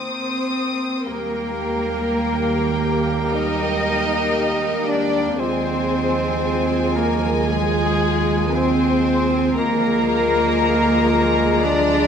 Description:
classical; 47-60 BPM; 4/4; rubato; Eb major; A4 = 439 Hz
warm chamber violin section; melody; 0.0-12.1 s; G5 to Eb6; -29 LUFS; left 3 dB
concert flute; second line; 0.0-12.1 s; Ab4 to Eb5; -29 LUFS; left 4 dB
mellow cor anglais; second line; 0.0-12.1 s; Ab3 to Eb4; -30 LUFS; right 2 dB
warm chamber violin section; second line; 0.0-12.1 s; Ab4 to Eb5; -25 LUFS; left 2 dB
dark chamber viola section; accompaniment; 0.0-12.1 s; F3 to Bb4; -28 LUFS; right 2 dB
warm chamber cello section; bass; 0.0-12.1 s; Ab3 to Eb4; -23 LUFS; right 2 dB
warm clarinet; second line; 1.1-12.1 s; F4 to G4; -32 LUFS; left 2 dB
warm bassoon; accompaniment; 1.1-12.1 s; Ab3 to Bb3; -30 LUFS; right 1 dB
warm French horn section; sustained chords; 1.1-12.1 s; Ab3 to G4; -27 LUFS; left 6 dB
clear chamber double bass section; bass; 1.1-12.1 s; D2 to Eb2; -26 LUFS; right 5 dB
moderate concert hall reverb, RT60 2.2 s; -17 LUFS; side -7 dB against mid
0.0-1.1 A section; 1.1-12.1 B section
0.0 Eb5; 1.1 Eb; 5.4 Fm7/Eb; 9.6 Bb7/D

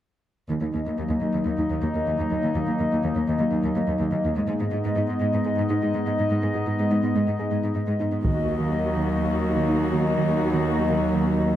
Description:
cinematic, hybrid orchestral and electronic film score; 124 BPM; 4/4; straight; Eb minor; A4 = 441 Hz
hollow soft pad; sustained chords; 0.5-11.6 s; Gb3 to Eb5; -25 LUFS; left 2 dB; chorus
harp-like synth pluck; arpeggios; 0.5-11.6 s; Eb3 to Ab4; -28 LUFS; right 3 dB; chorus, tape echo
rich studio cello section; bass; 0.5-11.6 s; Eb2 to Ab2; -27 LUFS; equal
dark symphonic viola section; accompaniment; 8.2-11.6 s; Bb3 to Gb4; -28 LUFS; left 1 dB
taiko ensemble; drums; 8.2-9.2 s; -28 LUFS; equal
moderate scoring stage reverb, RT60 1.9 s; close, detailed microphones; -21 LUFS; side -12 dB against mid
0.5-8.2 A section; 8.2-11.6 B section
build-up 8.2-11.6
0.5 Ebm; 4.4 Abm; 8.2 Ebm

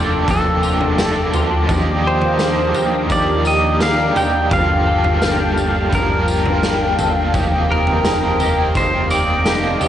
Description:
dream pop; 85 BPM; 4/4; straight; A4 = 441 Hz
pedal steel guitar; melody; 0.0-9.9 s; A4 to G5; -20 LUFS; equal; cassette tape, analog delay
biting overdriven guitar; accompaniment; 0.0-9.9 s; Eb3 to D5; -22 LUFS; right 4 dB; tremolo, lush chorus, cassette tape
phased analog pad; sustained chords; 0.0-9.9 s; G4 to D6; -23 LUFS; equal; phaser, chorus, cassette tape, plate reverb
semi-hollow electric guitar; arpeggios; 0.0-9.9 s; Eb3 to A4; -23 LUFS; left 4 dB; analog chorus, cassette tape, analog delay
fat analog bass; bass; 0.0-9.8 s; F1 to Eb2; -24 LUFS; equal
raw garage drum kit; drums; 0.3-9.9 s; kick drum, snare drum, tambourine, toms; -20 LUFS; equal; cassette tape
moderate studio reverb, RT60 0.6 s; home recording on cassette, nothing above 10.6 kHz; -14 LUFS; side -10 dB against mid
0.0-9.9 A section
0.0 Bbmaj7/F; 1.7 Ebmaj9; 4.5 Gm9; 7.3 F9sus4

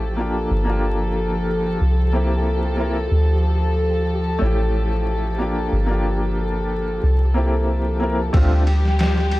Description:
trip hop; 92 BPM; 4/4; straight; D minor; A4 = 441 Hz
felt-muted upright piano; accompaniment; 0.0-8.6 s; A3 to Bb4; -25 LUFS; equal; tremolo, tape echo
dark studio string section; sustained chords; 0.0-9.4 s; F3 to A4; -25 LUFS; left 1 dB; vintage 12-bit sampler grit
soft 808-style bass; bass; 0.0-9.4 s; G1 to D2; -20 LUFS; equal; tube saturation
flickering grainy texture; texture; 0.1-9.4 s; G4; -33 LUFS; equal; built-in reverb
trip hop sampler-style drum kit; drums; 8.3-9.4 s; kick drum, ride cymbal, snare drum; -22 LUFS; equal; overdrive
small room ambience; dry, gritty hardware recording, vinyl crackle; -18 LUFS; side -18 dB against mid
0.0-8.3 A section; 8.3-9.4 B section
0.0 A7; 0.5 Gm7; 1.8 C7; 3.1 Dm; 4.4 A7; 5.7 Gm7; 7.0 C7; 8.3 Dm7

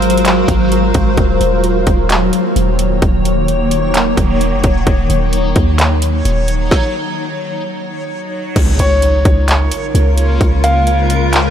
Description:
hip hop, atmospheric cloud-rap; 130 BPM; 4/4; half-time; Eb dorian; A4 = 439 Hz
granular cloud pad; sustained chords; 0.0-11.5 s; Db3 to F5; -16 LUFS; equal; built-in reverb, sidechain pumping
warm 808-style bass; bass; 0.0-11.5 s; Eb1 to Eb2; -15 LUFS; equal
trap drum kit; drums; 0.0-11.4 s; crash cymbal, handclaps, hi-hat, kick drum, snare drum; -16 LUFS; equal
backwards swelling texture; texture; 0.0-11.5 s; Gb3 to Db5; -22 LUFS; equal; built-in reverb
impact; sound effects; 8.6-10.4 s; -24 LUFS; equal
felt-muted upright piano; melody; 8.8-11.5 s; Db5 to F5; -18 LUFS; left 1 dB; low-pass filter, ping-pong delay
digital ambience; -11 LUFS; side -9 dB against mid
0.0-8.6 A section; 8.6-11.5 B section
stop 6.7-8.6; impact 8.6-10.4
0.0 Ab13; 1.2 Ebm7; 8.6 Db6

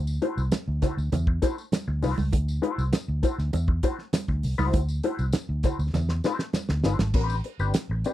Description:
funk; 100 BPM; 4/4; straight; A4 = 440 Hz
vintage muted fingered electric bass; bass; 0.0-8.0 s; G1 to E2; -26 LUFS; equal
tambourine; percussion; 0.1-8.1 s; -46 LUFS; left 6 dB
mellow electric guitar; accompaniment; 0.2-8.1 s; A3 to C5; -29 LUFS; left 4 dB; wah
damped 70s drum kit; drums; 0.2-8.1 s; crash cymbal, hi-hat, kick drum, snare drum; -26 LUFS; equal
congas; percussion; 0.5-7.1 s; -33 LUFS; right 5 dB
little or no reverb; dry, close 1970s-style studio recording; -24 LUFS; side -14 dB against mid
0.0-7.1 A section
drum fill 5.9-7.1
0.0 D9; 7.1 Am11

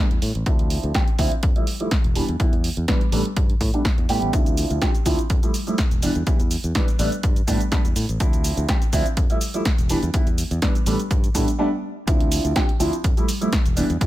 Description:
filtered disco house; 124 BPM; 4/4; swing 54% on 16ths; D dorian; A4 = 440 Hz
dark concert grand piano; accompaniment; 0.0-14.1 s; E3 to G4; -25 LUFS; right 1 dB; phaser, sidechain pumping, low-pass filter
fingered electric bass; bass; 0.1-14.0 s; E1 to A2; -25 LUFS; equal; sidechain pumping, low-pass filter
punchy analog drum machine; drums; 0.1-14.1 s; hi-hat, shaker, snare drum; -28 LUFS; equal; studio ambience
electronic kick drum; drums; 0.5-14.1 s; -20 LUFS; equal; studio ambience
digital ambience; -18 LUFS; side -15 dB against mid
0.0-12.1 A section; 12.1-14.1 B section
filter sweep 0.0-12.1; break 11.6-12.1; drop 12.1-14.1
0.5 Dm9; 1.4 Fmaj9; 2.2 Em; 3.1 A7sus2; 4.3 Dm9; 5.3 Fmaj9; 6.0 Em; 7.0 A9sus4; 8.2 Dm9; 9.2 Fmaj9; 9.9 Em; 10.9 A9sus4; 12.1 Dm9; 13.0 Fmaj9

